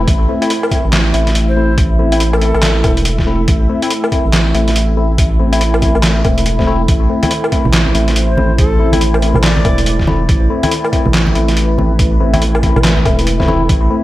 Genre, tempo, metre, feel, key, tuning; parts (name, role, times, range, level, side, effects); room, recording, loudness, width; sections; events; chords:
deep dubstep; 141 BPM; 4/4; swing 62% on 16ths, half-time; A minor; A4 = 440 Hz
dark analog pad; sustained chords; 0.0-14.0 s; A3 to E5; -20 LUFS; right 1 dB; chorus
saturated sub bass; bass; 0.0-13.9 s; E1 to A1; -14 LUFS; equal
electronic kick drum; drums; 0.1-13.8 s; -15 LUFS; equal; overdrive
trip hop sampler-style drum kit; drums; 0.1-13.8 s; handclaps, hi-hat, snare drum, woodblock; -17 LUFS; equal; overdrive
tine electric piano; stabs; 0.3-14.0 s; A3 to E4; -19 LUFS; left 3 dB; phaser, dub echo
breathy bright ney; melody; 1.5-2.9, 8.3-10.0 s; A4 to D5; -24 LUFS; left 2 dB; dub echo
congas; percussion; 7.2-13.6 s; -20 LUFS; right 1 dB
light reverb; -10 LUFS; side -15 dB against mid
0.0-14.0 A section
0.0 Am